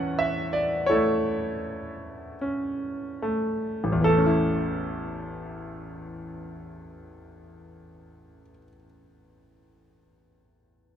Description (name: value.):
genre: classical, lyrical solo piano.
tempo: 36-47 BPM.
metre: 4/4.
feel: rubato.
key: A major.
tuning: A4 = 440 Hz.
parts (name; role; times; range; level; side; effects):
clear grand piano; solo; 0.0-11.0 s; A1 to G#5; -25 LUFS; equal; none.
room: light reverb.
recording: close, detailed microphones.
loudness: -24 LUFS.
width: side -9 dB against mid.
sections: 0.0-4.0 A section; 4.0-10.3 B section.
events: slowing down 0.0-4.0.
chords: 0.0 A.